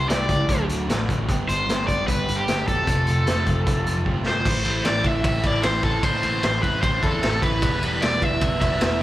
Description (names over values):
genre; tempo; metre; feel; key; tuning
indie rock; 151 BPM; 4/4; straight; unclear; A4 = 440 Hz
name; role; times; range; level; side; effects
cranked stack guitar; melody; 0.0-9.0 s; G4 to E5; -24 LUFS; equal; overdrive, slapback echo, analog delay
fuzz guitar; riff; 0.0-9.0 s; E2 to G4; -28 LUFS; equal; distortion, slapback echo
fuzz picked electric bass; bass; 0.0-9.0 s; E1 to E2; -26 LUFS; equal; overdrive
raw garage drum kit; drums; 0.1-8.9 s; crash cymbal, hi-hat, kick drum, ride cymbal, snare drum; -24 LUFS; equal; none
tonewheel organ; sustained chords; 4.4-9.0 s; E3 to E5; -37 LUFS; equal; none
room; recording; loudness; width
studio reverb; live gig heard through the venue's PA, club reverb; -19 LUFS; side -15 dB against mid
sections
0.0-4.5 A section; 4.5-9.0 B section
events
drum fill 4.1-4.5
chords
0.5 D; 1.3 G; 2.9 F; 4.5 Am; 7.6 Em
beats
0.09 0.49 0.88 | 1.28 1.68 2.07 2.47 | 2.87 3.27 3.66 4.06 | 4.46 4.85 5.25 5.64 | 6.04 6.44 6.83 7.23 | 7.62 8.02 8.41 8.81